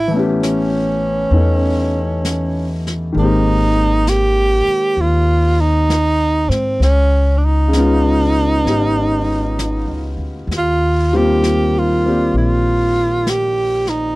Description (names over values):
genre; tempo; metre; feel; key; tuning
jazz ballad; 66 BPM; 4/4; swing 67% on 8ths; unclear; A4 = 440 Hz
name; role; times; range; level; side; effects
clear tenor saxophone; melody; 0.0-14.2 s; C4 to G4; -17 LUFS; right 2 dB; none
upright bass; bass; 0.0-14.1 s; Ab1 to Ab2; -18 LUFS; equal; none
clear concert grand piano; accompaniment; 0.1-14.2 s; Db3 to D5; -19 LUFS; left 2 dB; none
jazz brush drum kit; drums; 0.4-14.2 s; brushed snare drum, hi-hat, snare drum; -28 LUFS; left 1 dB; none
room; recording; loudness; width
little or no reverb; dry, close 1970s-style studio recording; -13 LUFS; side -20 dB against mid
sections
0.0-14.2 A section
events
none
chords
0.0 A9; 3.2 Abmaj9; 6.8 Db9; 10.5 Eb6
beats
0.42 1.33 2.24 | 3.15 4.06 4.97 5.88 | 6.79 7.72 8.64 9.57 | 10.50 11.43 12.35 13.27